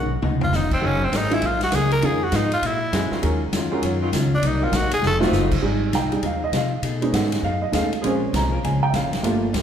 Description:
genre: jazz, big band swing.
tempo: 200 BPM.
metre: 4/4.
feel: swing 63% on 8ths.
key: F minor from 5.6 s.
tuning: A4 = 440 Hz.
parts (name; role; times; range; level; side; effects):
growling tenor saxophone; melody; 0.0-5.2 s; C4 to Bb4; -23 LUFS; equal; none.
archtop guitar, miked and amplified; accompaniment; 0.0-9.6 s; G2 to Bb4; -29 LUFS; left 4 dB; none.
warm baby grand piano; accompaniment; 0.0-9.5 s; Eb3 to Bb5; -24 LUFS; right 2 dB; none.
upright bass; bass; 0.0-9.6 s; Eb1 to C3; -24 LUFS; equal; none.
swinging big-band drum kit; drums; 0.2-9.6 s; crash cymbal, hi-hat, kick drum, ride cymbal, snare drum, toms; -27 LUFS; equal; none.
mellow saxophone section; sustained chords; 0.8-9.4 s; Eb3 to Bb4; -29 LUFS; equal; none.
room: wet large studio reverb, RT60 1.3 s.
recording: heard from further back in the room.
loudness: -19 LUFS.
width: side -8 dB against mid.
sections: 0.0-5.6 A section; 5.6-9.6 A section.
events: drum fill 0.0-0.5, 5.0-5.3; tenor saxophone solo 0.0-5.6; grand piano solo 5.6-9.6.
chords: 0.2 Db9; 0.8 Gb69; 2.0 Fm7b5; 2.6 Bb7alt; 3.2 Ebm9; 4.4 Cm7b5; 5.0 F7b9; 5.6 Fm7; 6.8 B13; 8.0 Bbm7.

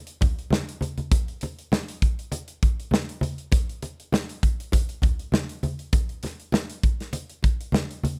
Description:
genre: soul.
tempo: 100 BPM.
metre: 4/4.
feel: swing 54% on 16ths.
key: none.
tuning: none.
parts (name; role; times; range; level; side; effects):
modern studio drum kit; drums; 0.1-8.2 s; hi-hat, kick drum, snare drum; -25 LUFS; equal; none.
congas; percussion; 0.2-8.2 s; none; -31 LUFS; equal; none.
room: little or no reverb.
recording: none.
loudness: -26 LUFS.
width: mono.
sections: 0.0-8.2 A section.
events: none.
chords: none.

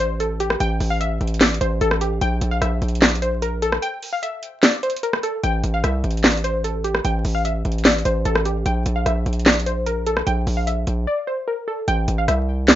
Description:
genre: hip hop, trap.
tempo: 149 BPM.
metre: 4/4.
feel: half-time.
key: unclear.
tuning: A4 = 441 Hz.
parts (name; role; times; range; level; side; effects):
glassy wavetable pluck; melody; 0.0-12.8 s; G4 to G5; -24 LUFS; left 1 dB; chorus.
distorted 808-style bass; bass; 0.0-12.8 s; A1 to C2; -22 LUFS; equal; distortion.
trap drum kit; drums; 0.0-12.8 s; handclaps, hi-hat, rim click, snare drum; -18 LUFS; equal; none.
room: light reverb.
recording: rough home demo mix, vinyl crackle, nothing above 7.6 kHz.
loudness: -18 LUFS.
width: side -12 dB against mid.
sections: 0.0-11.9 A section.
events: kick muted 3.8-5.4; break 11.1-11.9.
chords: 0.0 N.C.; 2.2 Bb(b5, no3); 5.4 A5; 8.7 Bb(b5, no3); 11.9 Am.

